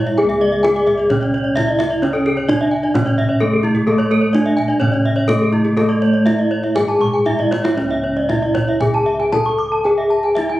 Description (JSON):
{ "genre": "Balinese gamelan", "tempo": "116-130 BPM", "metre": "4/4", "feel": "straight", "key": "C# pelog", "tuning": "A4 = 439 Hz", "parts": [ { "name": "gamelan-type bronze metallophone", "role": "melody", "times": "0.0-10.6 s", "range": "A3 to A4", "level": "-17 LUFS", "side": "equal", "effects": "none" }, { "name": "gamelan-type bronze metallophone", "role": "accompaniment", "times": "0.0-7.8 s", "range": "C#3 to A3", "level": "-26 LUFS", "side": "right 1 dB", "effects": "none" }, { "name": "gamelan-type bronze metallophone", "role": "arpeggios", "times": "0.0-10.5 s", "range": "E4 to D6+35c", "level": "-22 LUFS", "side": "left 1 dB", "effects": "none" }, { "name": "gamelan-type bossed gongs", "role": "bass", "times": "0.0-10.6 s", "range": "C#2 to A4", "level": "-23 LUFS", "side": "left 1 dB", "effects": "none" }, { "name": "kendang", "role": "percussion", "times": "0.1-10.6 s", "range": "none", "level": "-24 LUFS", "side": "right 2 dB", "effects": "none" }, { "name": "gamelan-type bronze metallophone", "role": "arpeggios", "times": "0.4-10.6 s", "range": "G#4 to C#6", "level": "-24 LUFS", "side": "right 1 dB", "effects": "none" } ], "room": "moderate recital hall reverb, RT60 1.4 s", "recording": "recorded on a phone in the room, studio ambience", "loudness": "-14 LUFS", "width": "side -15 dB against mid", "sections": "0.0-7.8 A section; 7.8-10.6 B section", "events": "drum fill 7.3-7.8", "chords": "none" }